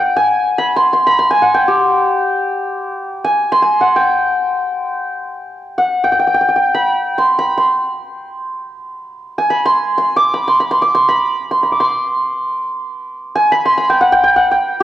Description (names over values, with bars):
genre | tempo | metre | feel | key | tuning
indian classical | free time | none | none | unclear | A4 = 438 Hz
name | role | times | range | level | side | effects
santur | solo | 0.0-14.8 s | G4 to D6 | -13 LUFS | equal | none
room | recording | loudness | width
moderate scoring stage reverb, RT60 1.8 s | worn, warbling old tape, cassette tape, warbly pitch drift | -12 LUFS | side -13 dB against mid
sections
0.0-2.9 A section; 2.9-14.8 A section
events
none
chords
none